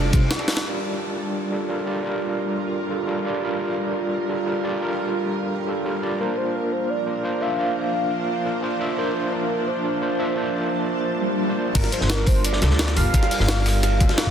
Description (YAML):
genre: liquid drum and bass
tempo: 173 BPM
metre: 4/4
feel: straight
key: G minor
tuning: A4 = 440 Hz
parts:
  - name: warm velvety synth lead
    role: melody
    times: 0.0-0.3, 6.2-14.3 s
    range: Bb4 to F5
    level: -28 LUFS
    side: equal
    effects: chorus, ping-pong delay
  - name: overdriven tine electric piano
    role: accompaniment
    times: 0.0-14.3 s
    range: G3 to E5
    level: -25 LUFS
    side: right 1 dB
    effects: fast tremolo, dub echo
  - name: shimmering ambient pad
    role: sustained chords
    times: 0.0-14.3 s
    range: F3 to A5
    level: -28 LUFS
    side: right 2 dB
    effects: chorus, built-in reverb, vintage 12-bit sampler grit, sidechain pumping
  - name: upright bass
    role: bass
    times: 0.0-0.2, 11.8-14.1 s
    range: F1 to D2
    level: -22 LUFS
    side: equal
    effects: none
  - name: crunchy breakbeat drum kit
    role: drums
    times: 0.1-0.7, 11.8-14.3 s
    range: hi-hat, ride cymbal, snare drum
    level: -30 LUFS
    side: equal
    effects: high-pass filter on cymbals, high-pass filter on hats, high-pass filter on snare, high-pass filter on room
  - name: electronic kick drum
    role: drums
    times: 0.1-0.2, 11.8-14.3 s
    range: none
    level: -19 LUFS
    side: equal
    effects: none
  - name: jungle sampler-style drum kit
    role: drums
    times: 0.1-0.6, 11.8-14.2 s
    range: crash cymbal, hi-hat, snare drum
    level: -26 LUFS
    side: equal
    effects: none
  - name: swell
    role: sound effects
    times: 11.2-11.8 s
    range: none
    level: -26 LUFS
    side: left 2 dB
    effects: none
room: light reverb, studio ambience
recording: dense, heavily limited modern master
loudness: -20 LUFS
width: side -8 dB against mid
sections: 0.7-11.8 A section; 11.8-14.3 B section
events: break 0.3-0.7; drum fill 0.5; band accent 0.6; swell 11.2-11.8; drop 11.8-14.3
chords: 0.0 F69; 0.7 Gm7; 6.2 C9sus4; 11.8 Gm7